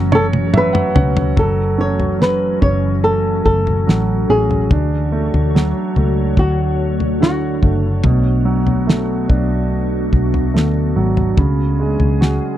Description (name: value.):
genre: pop ballad.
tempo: 72 BPM.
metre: 4/4.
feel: straight.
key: F# minor.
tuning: A4 = 445 Hz.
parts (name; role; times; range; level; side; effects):
warm grand piano; accompaniment; 0.0-12.6 s; B2 to F#5; -20 LUFS; right 4 dB; none.
glassy FM pad; sustained chords; 0.0-12.6 s; E3 to C#5; -23 LUFS; left 2 dB; ensemble chorus, built-in reverb.
vintage muted fingered electric bass; bass; 0.0-12.4 s; F#1 to D2; -18 LUFS; equal; none.
flamenco guitar; melody; 0.1-7.8 s; F#4 to C#5; -19 LUFS; equal; none.
damped 70s drum kit; drums; 0.1-12.4 s; kick drum, snare drum, toms; -17 LUFS; left 1 dB; none.
room: little or no reverb.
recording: dry, close 1970s-style studio recording.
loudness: -13 LUFS.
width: side -12 dB against mid.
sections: 0.0-1.4 A section; 1.4-12.6 B section.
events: drum fill 0.0-1.4; grand piano fill 0.0-1.4.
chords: 0.0 F#m7; 4.7 Dmaj7; 8.0 Bm7; 11.4 C#sus4.